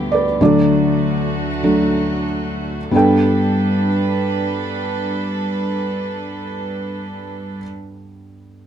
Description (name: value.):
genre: acoustic folk-pop ballad.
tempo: 46 BPM.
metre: 4/4.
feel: straight.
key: G major.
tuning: A4 = 440 Hz.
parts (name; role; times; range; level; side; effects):
felt-muted upright piano; melody; 0.0-8.7 s; D2 to G5; -17 LUFS; equal; none.
warm chamber string section; sustained chords; 0.0-7.6 s; D2 to B4; -23 LUFS; right 2 dB; none.
room: moderate small room reverb, RT60 0.5 s.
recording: dark, warm production.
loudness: -16 LUFS.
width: side -9 dB against mid.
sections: 0.0-2.9 A section; 2.9-8.2 B section.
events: slowing down 0.0-2.9.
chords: 0.4 D; 2.9 Gadd9.